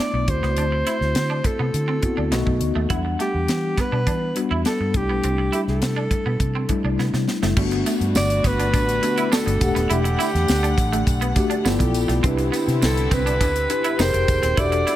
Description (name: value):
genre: polished 1980s jazz-funk pop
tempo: 103 BPM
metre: 4/4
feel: straight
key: E minor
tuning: A4 = 439 Hz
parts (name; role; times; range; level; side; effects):
- breathy alto saxophone; melody; 0.0-15.0 s; G4 to D5; -25 LUFS; equal; none
- mellow tine electric piano; accompaniment; 0.0-15.0 s; F#3 to F#5; -24 LUFS; left 3 dB; medium stereo tremolo, lush chorus
- electric guitar at the edge of break-up; riff; 0.0-15.0 s; G3 to E4; -29 LUFS; right 6 dB; ensemble chorus
- vintage muted fingered electric bass; bass; 0.1-14.8 s; D#1 to E3; -23 LUFS; equal; none
- tight funk drum kit; drums; 0.3-15.0 s; crash cymbal, hi-hat, kick drum, snare drum; -24 LUFS; equal; none
- warm studio string section; sustained chords; 7.6-15.0 s; D3 to G5; -30 LUFS; equal; none
- tambourine; percussion; 7.9-15.0 s; none; -36 LUFS; right 7 dB; none
room: light reverb, small room ambience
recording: none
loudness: -18 LUFS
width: side -13 dB against mid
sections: 0.0-7.6 A section; 7.6-15.0 B section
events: tine electric piano fill 2.0-2.9, 11.4-12.2; drum fill 7.0-7.6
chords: 0.3 D13; 2.3 B7; 2.9 Em9; 4.9 C69; 7.6 Gmaj7; 9.6 Em11; 11.7 G13; 12.2 Cmaj9; 14.0 Fm11